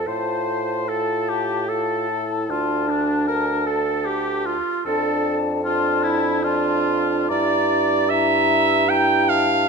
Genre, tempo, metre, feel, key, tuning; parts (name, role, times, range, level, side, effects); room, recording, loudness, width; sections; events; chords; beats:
classical, slow romantic movement for wind quintet; 76 BPM; 3/4; rubato; A4 = 440 Hz
concert flute; melody; 0.0-9.7 s; A5 to Bb5; -27 LUFS; left 17 dB
warm oboe; second line; 0.0-9.7 s; D4 to G5; -26 LUFS; left 6 dB
clear clarinet; accompaniment; 0.0-9.7 s; D4 to G5; -22 LUFS; right 8 dB
warm French horn; accompaniment; 0.0-9.7 s; D4 to F4; -27 LUFS; left 1 dB
mellow bassoon; bass; 0.0-9.6 s; D2 to A2; -26 LUFS; right 1 dB
moderate recital hall reverb, RT60 1.5 s; -18 LUFS; side -4 dB against mid
0.0-9.7 A section
0.1 F/A; 2.5 D5; 4.9 Dm/F; 7.3 Em7b5/G
| 0.07 0.89 1.69 | 2.49 3.27 4.07 | 4.86 5.64 6.43 | 7.29 8.10 8.88 | 9.68